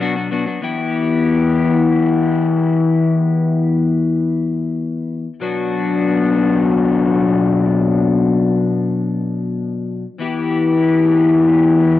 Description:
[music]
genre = rock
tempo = free time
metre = none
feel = none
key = E minor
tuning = A4 = 435 Hz
[part]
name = crunchy overdriven guitar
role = solo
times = 0.0-12.0 s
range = B2 to G4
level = -14 LUFS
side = left 3 dB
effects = tape echo
[sound]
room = digital ambience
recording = home recording on cassette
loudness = -14 LUFS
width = side -14 dB against mid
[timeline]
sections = 0.6-12.0 A section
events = none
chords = 0.0 Bm; 0.6 Em; 5.4 Bm; 10.2 Em

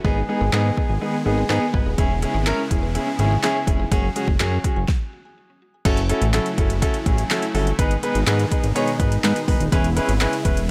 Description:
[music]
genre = dance-pop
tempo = 124 BPM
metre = 4/4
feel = straight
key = unclear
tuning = A4 = 437 Hz
[part]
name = clear concert grand piano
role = accompaniment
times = 0.0-10.6 s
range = B3 to C#5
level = -26 LUFS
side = equal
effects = sidechain pumping
[part]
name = supersaw chords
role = sustained chords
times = 0.0-10.7 s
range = B2 to G#4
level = -32 LUFS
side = equal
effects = sidechain pumping
[part]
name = mallet-like synth pluck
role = arpeggios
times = 0.0-4.9 s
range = G#3 to G#6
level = -34 LUFS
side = equal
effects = chorus, sidechain pumping, delay
[part]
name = fat analog bass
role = bass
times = 0.0-10.7 s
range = D#1 to G#2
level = -24 LUFS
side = equal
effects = sidechain pumping
[part]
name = deep house drum kit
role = drums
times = 0.0-10.7 s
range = crash cymbal, handclaps, hi-hat, kick drum, snare drum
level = -25 LUFS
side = equal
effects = none
[sound]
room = digital ambience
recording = none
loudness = -21 LUFS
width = mono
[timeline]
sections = 0.0-5.9 A section; 5.9-10.7 B section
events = stop 4.9-5.9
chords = 0.0 G#m; 2.0 E6; 3.9 F#sus2; 5.9 F#m7; 7.8 G#m; 9.7 E6

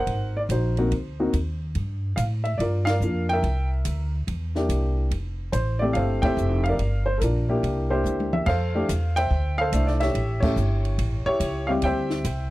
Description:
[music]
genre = jazz piano trio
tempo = 143 BPM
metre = 4/4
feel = swing 66% on 8ths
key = F major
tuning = A4 = 440 Hz
[part]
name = dark baby grand piano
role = melody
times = 0.0-12.5 s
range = G3 to G5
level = -25 LUFS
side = equal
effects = none
[part]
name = upright bass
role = bass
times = 0.0-12.5 s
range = F1 to A2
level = -24 LUFS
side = equal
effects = none
[part]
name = compact cocktail drum kit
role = drums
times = 0.1-12.4 s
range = crash cymbal, hi-hat, kick drum, ride cymbal, snare drum, toms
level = -30 LUFS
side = equal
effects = none
[sound]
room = little or no reverb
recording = dry, close 1970s-style studio recording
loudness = -22 LUFS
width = side -17 dB against mid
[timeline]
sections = 0.0-8.5 A section; 8.5-12.5 B section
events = band accent 2.8, 6.2, 10.4; drum fill 8.1-8.5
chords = 0.1 Ab9; 1.8 Gm7; 3.4 C9; 5.1 Fmaj9; 6.8 Gm7; 7.6 C9; 8.5 Fmaj13; 10.1 A7; 11.8 D9sus4

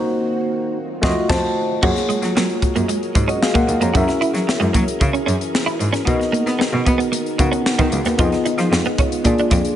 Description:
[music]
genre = polished 1980s jazz-funk pop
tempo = 113 BPM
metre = 4/4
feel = straight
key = unclear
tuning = A4 = 440 Hz
[part]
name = tine electric piano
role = accompaniment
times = 0.0-9.8 s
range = A3 to Bb5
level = -21 LUFS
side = left 1 dB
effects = analog chorus
[part]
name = soft string machine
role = sustained chords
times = 0.0-9.8 s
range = D3 to Bb4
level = -27 LUFS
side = equal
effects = ensemble chorus
[part]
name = warm cello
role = bass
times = 1.0-9.6 s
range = Db2 to B3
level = -21 LUFS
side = equal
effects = none
[part]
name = crisp fusion drum kit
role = drums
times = 1.0-9.8 s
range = crash cymbal, hi-hat, kick drum, snare drum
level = -21 LUFS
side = equal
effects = gated reverb
[part]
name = clean electric guitar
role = riff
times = 1.8-9.6 s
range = Ab3 to Gb4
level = -23 LUFS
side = right 4 dB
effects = ensemble chorus
[sound]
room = light reverb, small room ambience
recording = nothing above 10.7 kHz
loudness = -16 LUFS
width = side -11 dB against mid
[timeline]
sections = 0.0-1.8 A section; 1.8-9.8 B section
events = band accent 0.0-1.8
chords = 0.0 Cm7b5; 0.8 F7b9; 1.8 Gbmaj9; 3.9 Gb7; 6.1 Bmaj7; 8.2 Fm7b5; 9.3 Bb7

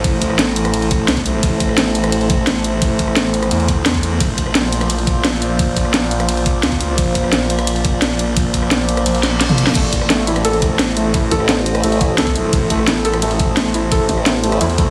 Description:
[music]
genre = dark technical drum and bass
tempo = 173 BPM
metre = 4/4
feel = straight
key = A phrygian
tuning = A4 = 439 Hz
[part]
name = metallic inharmonic drone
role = sustained chords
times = 0.0-14.9 s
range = A3 to D5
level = -23 LUFS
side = equal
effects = chorus, built-in reverb, sidechain pumping
[part]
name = snarling distorted saw bass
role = bass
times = 0.0-14.9 s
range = A1 to E2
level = -22 LUFS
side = equal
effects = distortion, overdrive
[part]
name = drum and bass drum kit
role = drums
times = 0.0-14.9 s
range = crash cymbal, hi-hat, ride cymbal, rim click, snare drum, toms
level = -21 LUFS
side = equal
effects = none
[part]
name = electronic kick drum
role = drums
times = 0.0-14.9 s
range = none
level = -21 LUFS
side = equal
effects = none
[part]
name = reverse cymbal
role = sound effects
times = 9.2-9.8 s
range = none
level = -29 LUFS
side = equal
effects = none
[part]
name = felt-muted upright piano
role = arpeggios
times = 9.8-14.8 s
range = A3 to A4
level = -23 LUFS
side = equal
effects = sidechain pumping, dub echo
[part]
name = formant-sweep wobble bass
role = bass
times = 11.3-14.6 s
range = A1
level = -21 LUFS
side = equal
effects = chorus
[sound]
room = moderate digital room reverb, RT60 1.2 s, digital ambience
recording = heavily compressed radio sound, multiband compression, studio reverb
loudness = -16 LUFS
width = mono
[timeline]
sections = 0.0-14.9 A section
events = kick drops out 9.1-9.8; reverse cymbal 9.2-9.8; drum fill 9.2-9.8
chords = 0.0 Am; 4.2 Bb; 9.8 Am

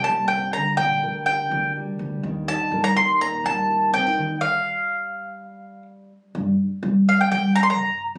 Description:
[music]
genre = indie folk with a building arrangement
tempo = 124 BPM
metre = 4/4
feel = straight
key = G minor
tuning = A4 = 440 Hz
[part]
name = mandolin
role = melody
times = 0.0-8.0 s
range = F5 to C6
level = -23 LUFS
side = equal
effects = none
[part]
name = fingerpicked steel-string acoustic guitar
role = accompaniment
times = 0.0-6.1 s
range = Bb2 to C5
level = -32 LUFS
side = equal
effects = none
[part]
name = upright bass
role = bass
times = 0.1-8.2 s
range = D2 to G3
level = -26 LUFS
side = equal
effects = none
[sound]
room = light reverb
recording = recorded on a phone in the room, club reverb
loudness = -22 LUFS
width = mono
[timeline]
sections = 0.0-6.3 A section; 6.3-8.2 B section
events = stop 4.4-6.3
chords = 0.0 Cm; 0.6 Gm/D; 2.2 Eb; 4.4 N.C.; 6.3 G5

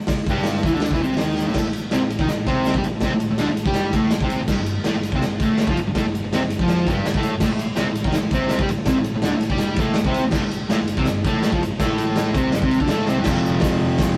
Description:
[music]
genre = garage rock duo or trio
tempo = 164 BPM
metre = 4/4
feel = straight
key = A minor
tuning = A4 = 439 Hz
[part]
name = tube shaker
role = percussion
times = 0.0-14.1 s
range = none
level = -49 LUFS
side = equal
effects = none
[part]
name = raw garage drum kit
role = drums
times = 0.1-14.1 s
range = crash cymbal, hi-hat, kick drum, ride cymbal, snare drum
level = -24 LUFS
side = equal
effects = none
[part]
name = fuzz guitar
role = riff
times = 0.3-14.2 s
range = F2 to G4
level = -24 LUFS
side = equal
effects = distortion
[part]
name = growling fingered electric bass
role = bass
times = 0.3-14.1 s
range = F1 to G2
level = -34 LUFS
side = equal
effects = none
[sound]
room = moderate studio reverb, RT60 0.7 s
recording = rough rehearsal-room recording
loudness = -21 LUFS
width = mono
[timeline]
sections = 0.0-1.6 A section; 1.6-13.3 B section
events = drum fill 1.4, 13.1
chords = 0.0 Am; 4.5 G9sus4; 7.4 Am; 10.3 G5; 13.3 F5

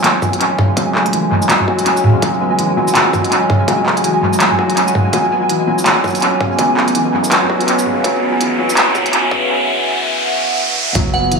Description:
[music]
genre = half-time drum and bass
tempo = 165 BPM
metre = 4/4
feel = swing 60% on 16ths, half-time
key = unclear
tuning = A4 = 438 Hz
[part]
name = deep dark ambient pad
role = sustained chords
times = 1.9-11.4 s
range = B3 to D6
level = -22 LUFS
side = equal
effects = chorus, built-in reverb, sidechain pumping
[part]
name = felt-muted upright piano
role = arpeggios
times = 0.0-11.4 s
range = F#2 to F#4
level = -18 LUFS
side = left 2 dB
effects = analog delay
[part]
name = industrial drum kit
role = drums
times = 0.0-11.4 s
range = handclaps, hi-hat, shaker, toms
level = -15 LUFS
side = right 1 dB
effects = small room ambience, analog delay
[part]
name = pulsing gated texture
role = texture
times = 0.0-9.5 s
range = G#3 to G#5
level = -19 LUFS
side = right 2 dB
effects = chorus, built-in reverb
[part]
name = electronic kick drum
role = drums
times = 0.2-11.0 s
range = none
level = -23 LUFS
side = equal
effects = none
[part]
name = riser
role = sound effects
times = 7.0-11.0 s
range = none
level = -20 LUFS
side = equal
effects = none
[part]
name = long sustained 808-style bass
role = bass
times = 11.0-11.4 s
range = F#1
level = -20 LUFS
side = right 1 dB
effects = none
[part]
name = glassy synth bell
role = melody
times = 11.1-11.4 s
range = F#5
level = -16 LUFS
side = right 3 dB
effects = chorus, phaser
[sound]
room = wet echo chamber reverb, RT60 1.6 s, digital ambience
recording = echo-heavy mix, high-pass filter, studio ambience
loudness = -12 LUFS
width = side -4 dB against mid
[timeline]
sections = 0.0-11.0 A section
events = build-up 0.0-11.0; filter sweep 0.0-11.0; riser 7.0-11.0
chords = 0.0 F#m; 5.1 Bm

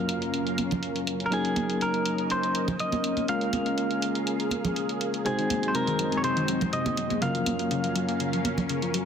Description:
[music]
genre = nu-disco, nu disco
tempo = 122 BPM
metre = 4/4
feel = straight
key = Eb dorian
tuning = A4 = 440 Hz
[part]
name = clean electric guitar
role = melody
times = 0.0-8.9 s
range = Ab4 to F5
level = -30 LUFS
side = equal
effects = ping-pong delay
[part]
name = tine electric piano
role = accompaniment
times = 0.0-9.1 s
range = Gb3 to C5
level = -30 LUFS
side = equal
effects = medium stereo tremolo
[part]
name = lush unison pad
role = sustained chords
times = 0.0-9.1 s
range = Gb3 to F5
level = -31 LUFS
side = left 1 dB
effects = chorus, phaser
[part]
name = downlifter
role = sound effects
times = 0.0-1.3 s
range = none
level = -49 LUFS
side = left 1 dB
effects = none
[part]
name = electronic hi-hat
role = drums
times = 0.1-9.0 s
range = none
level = -35 LUFS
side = equal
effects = low-pass filter on hats, low-pass filter on snare, low-pass filter on room
[part]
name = congas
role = percussion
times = 0.6-8.7 s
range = none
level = -33 LUFS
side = right 3 dB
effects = none
[part]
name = wide unison pluck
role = arpeggios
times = 5.3-9.0 s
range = C3 to Bb3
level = -32 LUFS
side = left 3 dB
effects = phaser, ping-pong delay
[sound]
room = moderate plate reverb, RT60 2.6 s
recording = dense, heavily limited modern master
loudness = -24 LUFS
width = side -7 dB against mid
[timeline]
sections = 0.0-9.1 A section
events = filter sweep on analog synth pad 0.0-9.1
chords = 0.0 Gbmaj7; 1.3 Ebm7; 3.3 Bbm7; 5.3 Ab7; 7.2 Gbmaj7

